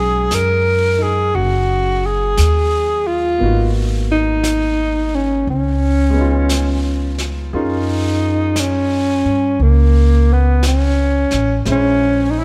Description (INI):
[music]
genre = jazz ballad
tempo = 58 BPM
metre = 4/4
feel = swing 66% on 8ths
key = unclear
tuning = A4 = 441 Hz
[part]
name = warm alto saxophone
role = melody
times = 0.0-12.4 s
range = A#3 to A#4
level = -19 LUFS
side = equal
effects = none
[part]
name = clear concert grand piano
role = accompaniment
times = 0.0-12.4 s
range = F#3 to B#4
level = -28 LUFS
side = equal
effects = none
[part]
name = upright bass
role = bass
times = 0.0-12.4 s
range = F#1 to G2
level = -19 LUFS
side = equal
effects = none
[part]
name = jazz brush drum kit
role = drums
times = 0.3-12.4 s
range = brushed snare drum, hi-hat, snare drum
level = -31 LUFS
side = equal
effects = none
[sound]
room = light reverb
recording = none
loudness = -16 LUFS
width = mono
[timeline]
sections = 0.0-12.4 A section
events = none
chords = 0.0 B69 (rootless); 3.4 G#m9; 5.5 C#7; 7.5 F#maj7; 11.7 A#m7b5